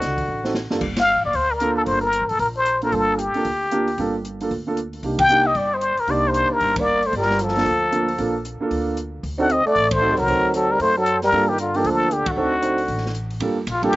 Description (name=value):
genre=jazz, small-group swing and bop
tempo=229 BPM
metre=4/4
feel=swing 60% on 8ths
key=G minor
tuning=A4 = 442 Hz
part: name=trumpet with plunger mute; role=melody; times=0.0-14.0 s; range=F4 to G5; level=-19 LUFS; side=left 2 dB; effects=slapback echo
part: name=growling trombone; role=second line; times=0.0-0.6, 6.8-13.2 s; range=D3 to D4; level=-25 LUFS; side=right 2 dB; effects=none
part: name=upright bass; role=bass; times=0.0-14.0 s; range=F#1 to G2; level=-30 LUFS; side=equal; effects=none
part: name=open jazz drum kit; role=drums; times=0.0-14.0 s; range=crash cymbal, hi-hat, kick drum, ride cymbal, snare drum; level=-33 LUFS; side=equal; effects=none
part: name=warm concert grand piano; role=accompaniment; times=0.4-13.9 s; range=G2 to C5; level=-24 LUFS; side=right 2 dB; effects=none
room=little or no reverb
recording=recorded outdoors, with no room sound, nothing above 7.8 kHz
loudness=-18 LUFS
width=side -18 dB against mid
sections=0.8-13.4 A section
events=drum fill 0.3-0.8; band accent 0.9, 5.2, 6.7, 9.9, 12.2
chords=0.0 D; 0.8 Gm9; 5.0 Cm9; 7.1 Gm9; 9.2 D7b9; 11.3 Gm9; 12.4 D7b9; 13.4 Gm9